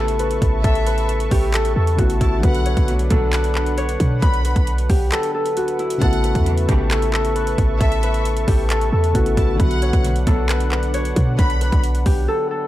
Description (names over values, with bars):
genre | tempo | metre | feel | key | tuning
hip hop, trap | 134 BPM | 4/4 | half-time | B minor | A4 = 440 Hz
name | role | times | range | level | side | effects
Celtic harp | melody | 0.0-12.7 s | E4 to C#5 | -23 LUFS | left 2 dB | low-pass filter
soft electric-piano-like synth keys | accompaniment | 0.0-12.7 s | C#3 to B4 | -28 LUFS | left 1 dB | chorus, low-pass filter
warm analog pad | sustained chords | 0.0-12.7 s | D4 to C#6 | -30 LUFS | right 2 dB | chorus
clean 808-style bass | bass | 0.0-12.3 s | A1 to B2 | -19 LUFS | equal | none
trap drum kit | drums | 0.1-12.2 s | handclaps, hi-hat, kick drum | -21 LUFS | equal | none
warm studio violin section | second line | 0.6-11.8 s | E5 to B5 | -29 LUFS | equal | analog delay
warm symphonic string section | stabs | 2.9-3.3, 6.5-6.9, 10.0-10.5 s | C#2 to F#3 | -27 LUFS | right 2 dB | none
room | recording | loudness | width
digital ambience | dry, gritty hardware recording, transformer saturation | -16 LUFS | side -14 dB against mid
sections
0.0-12.7 A section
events
break 5.1-6.0, 12.3-12.7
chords
0.0 Aadd9; 2.4 Bm; 6.0 Aadd9; 9.6 Bm